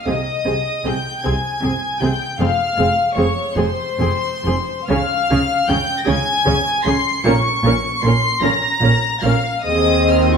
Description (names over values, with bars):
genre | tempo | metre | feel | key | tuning
classical, slow romantic movement for string orchestra | 42-53 BPM (dotted quarters) | 6/8 | rubato | Ab major | A4 = 440 Hz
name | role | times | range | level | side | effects
rich studio violin section | melody | 0.0-10.4 s | C6 to Db7 | -22 LUFS | left 2 dB | none
warm studio violin section | second line | 0.0-10.4 s | C5 to Db6 | -21 LUFS | left 4 dB | none
dark studio viola section | accompaniment | 0.1-10.4 s | C4 to Bb4 | -21 LUFS | right 2 dB | none
dark studio double bass section | bass | 0.1-10.4 s | F1 to Eb2 | -23 LUFS | right 2 dB | none
warm studio cello section | bass | 0.1-10.4 s | Eb2 to Db3 | -23 LUFS | right 2 dB | none
room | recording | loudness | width
moderate recital hall reverb, RT60 1.4 s | none | -15 LUFS | side -6 dB against mid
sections
0.0-10.4 A section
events
none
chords
0.1 Ab/C; 2.4 Fm; 4.9 Db; 7.3 Bbm; 9.7 Ab/Eb